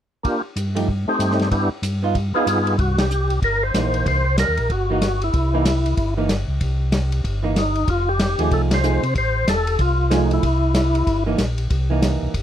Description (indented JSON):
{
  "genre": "soul jazz organ trio",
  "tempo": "188 BPM",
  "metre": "4/4",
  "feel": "swing 62% on 8ths",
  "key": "unclear",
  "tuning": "A4 = 440 Hz",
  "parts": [
    { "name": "percussive tonewheel organ", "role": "melody", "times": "0.2-11.2 s", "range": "A3 to C5", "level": "-21 LUFS", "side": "left 1 dB", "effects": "slow rotary speaker, overdrive, chorus vibrato" },
    { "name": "warm soul drum kit", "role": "drums", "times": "0.2-12.4 s", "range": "hi-hat, kick drum, ride cymbal, snare drum", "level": "-25 LUFS", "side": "equal", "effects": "none" },
    { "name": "mellow tonewheel organ", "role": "bass", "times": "0.6-12.4 s", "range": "E1 to C3", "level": "-21 LUFS", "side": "equal", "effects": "chorus vibrato, slow rotary speaker" },
    { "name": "vintage hollow-body jazz guitar", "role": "accompaniment", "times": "0.8-12.3 s", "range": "E3 to G#4", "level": "-23 LUFS", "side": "right 5 dB", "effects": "none" }
  ],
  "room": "little or no reverb",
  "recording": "close, detailed microphones",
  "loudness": "-17 LUFS",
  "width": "side -10 dB against mid",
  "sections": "0.2-2.8 A section; 2.8-12.4 B section",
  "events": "band accent 2.9, 8.7",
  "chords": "0.2 Gm9; 0.9 Am7b5/G; 1.5 Em7; 2.8 C7#9; 7.9 F7#9; 10.4 C7#9"
}